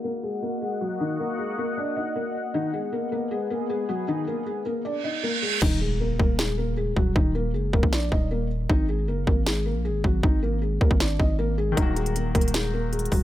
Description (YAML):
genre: hip hop, trap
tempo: 156 BPM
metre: 4/4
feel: half-time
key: Eb harmonic minor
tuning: A4 = 440 Hz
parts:
  - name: felt-muted upright piano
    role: melody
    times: 0.0-13.2 s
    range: Eb3 to Eb5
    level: -28 LUFS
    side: left 2 dB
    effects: low-pass filter
  - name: sweeping resonant pad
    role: sustained chords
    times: 0.0-5.6 s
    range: Bb3 to Gb5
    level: -32 LUFS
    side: left 1 dB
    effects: chorus, low-pass filter
  - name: reverse cymbal and impact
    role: sound effects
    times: 5.0-7.2 s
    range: none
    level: -30 LUFS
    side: right 5 dB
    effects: none
  - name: growling 808-style bass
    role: bass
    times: 5.6-13.2 s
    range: Eb1 to Eb2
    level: -26 LUFS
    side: equal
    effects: none
  - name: trap drum kit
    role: drums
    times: 5.6-13.2 s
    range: crash cymbal, hi-hat, kick drum, snare drum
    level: -23 LUFS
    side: equal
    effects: none
  - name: clear concert grand piano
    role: accompaniment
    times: 11.7-13.2 s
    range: Eb3 to Gb4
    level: -31 LUFS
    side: left 4 dB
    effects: none
room: little or no reverb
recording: none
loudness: -23 LUFS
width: side -13 dB against mid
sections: 0.0-5.6 A section; 5.6-13.2 B section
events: filter sweep 0.0-5.6; reverse cymbal 5.0-5.6; hi-hats muted 5.6-11.8; impact 5.6-7.2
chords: 0.0 Ebm; 2.5 Abm7; 5.6 Eb5; 8.7 Ab5; 11.8 Ebm